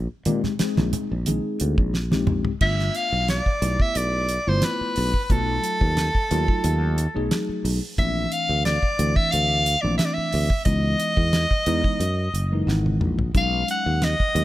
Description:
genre	electric jazz fusion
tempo	89 BPM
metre	4/4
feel	straight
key	unclear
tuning	A4 = 441 Hz
part	sustaining fretless electric bass	bass	0.0-14.4 s	F#1 to Bb2	-24 LUFS	equal	none
part	mellow tine electric piano	accompaniment	0.3-14.4 s	E3 to F#5	-28 LUFS	left 2 dB	phaser
part	damped 70s drum kit	drums	0.3-14.4 s	crash cymbal, hi-hat, kick drum, snare drum, toms	-25 LUFS	equal	none
part	congas	percussion	0.3-2.4 s	none	-26 LUFS	right 2 dB	none
part	bright soprano saxophone	melody	2.6-14.4 s	A4 to F#5	-24 LUFS	equal	none
room	light reverb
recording	none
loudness	-20 LUFS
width	side -15 dB against mid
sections	0.0-2.6 A section; 2.6-14.4 B section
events	drum fill 1.9-2.6, 12.7-13.3; tine electric piano fill 12.3-13.3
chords	0.0 Bb13sus4; 2.6 G13; 5.3 B7#11; 8.0 Bbmaj9#11; 10.7 C#m9; 12.0 F#13; 13.3 B69

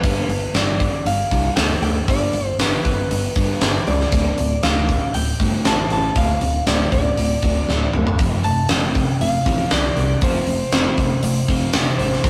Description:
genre	hard rock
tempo	118 BPM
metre	4/4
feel	straight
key	unclear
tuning	A4 = 440 Hz
part	lightly driven lead guitar	melody	0.0-12.3 s	B4 to A5	-27 LUFS	equal	none
part	crunchy overdriven guitar	riff	0.0-12.3 s	D2 to A3	-26 LUFS	equal	none
part	picked electric bass	bass	0.0-12.3 s	D1 to D2	-25 LUFS	equal	none
part	big rock drum kit	drums	0.0-12.3 s	hi-hat, kick drum, snare drum, toms	-22 LUFS	equal	none
room	light reverb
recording	rough rehearsal-room recording, warm saturation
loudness	-19 LUFS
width	mono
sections	0.0-12.3 A section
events	drum fill 7.7-8.2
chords	0.0 G; 4.1 Dm; 8.2 F5

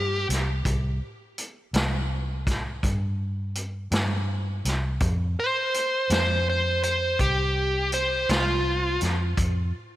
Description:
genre	slow blues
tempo	55 BPM (dotted quarters)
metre	12/8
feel	straight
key	unclear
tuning	A4 = 440 Hz
part	dark smooth lead guitar	melody	0.0-9.0 s	F4 to C5	-25 LUFS	equal	overdrive, slapback echo
part	vintage muted fingered electric bass	bass	0.0-9.7 s	C2 to G2	-27 LUFS	equal	none
part	vintage drum kit	drums	0.3-9.5 s	hi-hat, kick drum, snare drum	-28 LUFS	equal	none
room	light reverb, small room ambience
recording	none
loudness	-23 LUFS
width	side -14 dB against mid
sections	0.0-10.0 A section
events	none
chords	0.0 C5; 5.0 F5

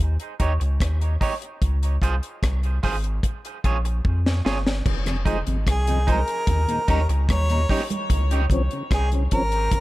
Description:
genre	dub reggae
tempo	74 BPM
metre	4/4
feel	straight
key	unclear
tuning	A4 = 441 Hz
part	soft dub sub bass	bass	0.0-9.7 s	F1 to F2	-22 LUFS	equal	none
part	deep reggae drum kit	drums	0.2-9.8 s	crash cymbal, hi-hat, kick drum, rim click, snare drum	-24 LUFS	equal	none
part	electric guitar at the edge of break-up	accompaniment	0.4-7.8 s	Eb4 to Db5	-31 LUFS	right 4 dB	low-pass filter, dub echo
part	congas	percussion	4.9-9.8 s	none	-34 LUFS	right 5 dB	none
part	mellow tonewheel organ	accompaniment	5.1-9.4 s	Eb2 to Eb4	-30 LUFS	left 1 dB	overdrive, chorus vibrato, slow rotary speaker, dub echo
part	clear harmonica	melody	5.7-9.8 s	Ab4 to Db5	-26 LUFS	equal	dub echo
room	light reverb, small room ambience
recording	echo-heavy mix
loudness	-20 LUFS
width	side -18 dB against mid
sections	0.0-4.9 A section; 4.9-9.8 B section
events	drum fill 4.0-4.9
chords	0.0 Eb7; 1.6 Dbmaj7; 3.2 Bbm7; 4.9 Fm7; 6.5 Eb7; 8.1 Dbmaj7

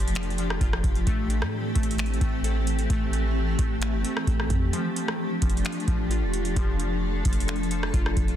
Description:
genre	hip hop, atmospheric cloud-rap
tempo	131 BPM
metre	4/4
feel	half-time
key	unclear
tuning	A4 = 438 Hz
part	granular cloud pad	sustained chords	0.0-8.4 s	E3 to A4	-30 LUFS	equal	built-in reverb, sidechain pumping
part	glassy digital keys	arpeggios	0.0-8.4 s	F3 to A4	-34 LUFS	left 4 dB	chorus, ping-pong delay
part	clean 808-style bass	bass	0.0-8.4 s	E1 to A2	-27 LUFS	equal	none
part	booming analog drum machine	drums	0.0-8.4 s	finger snaps, hi-hat, kick drum, rim click	-27 LUFS	equal	soft clipping on snare
room	little or no reverb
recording	dense, heavily limited modern master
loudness	-23 LUFS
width	side -11 dB against mid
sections	0.0-8.4 A section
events	break 4.7-5.2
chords	0.0 F69; 1.1 Am7; 4.7 F69

